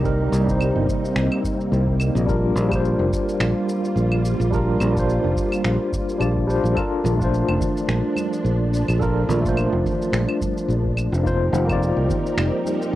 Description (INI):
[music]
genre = sunset chillout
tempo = 107 BPM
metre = 4/4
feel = swing 56% on 16ths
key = unclear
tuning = A4 = 440 Hz
[part]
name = barky tine electric piano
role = accompaniment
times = 0.0-13.0 s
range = G3 to D5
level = -23 LUFS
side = moving between left 4 dB and right 4 dB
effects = fast stereo tremolo, auto-pan, analog delay
[part]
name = soft string machine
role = sustained chords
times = 0.0-13.0 s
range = C3 to Bb4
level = -28 LUFS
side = equal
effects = ensemble chorus
[part]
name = fingered electric bass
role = bass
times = 0.0-13.0 s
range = F1 to C2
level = -21 LUFS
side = equal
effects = none
[part]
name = electronic kick drum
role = drums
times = 0.0-12.2 s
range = none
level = -28 LUFS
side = equal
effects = cassette tape
[part]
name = electronic shaker, claves and finger snaps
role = drums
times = 0.0-12.9 s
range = none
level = -31 LUFS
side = right 1 dB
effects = cassette tape
[part]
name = congas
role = percussion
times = 7.0-12.8 s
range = none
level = -31 LUFS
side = right 7 dB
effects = none
[sound]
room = light reverb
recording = home recording on cassette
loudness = -18 LUFS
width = side -14 dB against mid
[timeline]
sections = 0.0-13.0 A section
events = none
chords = 0.0 Cm7; 2.3 Gm7; 6.8 Bbmaj7; 11.3 F7sus4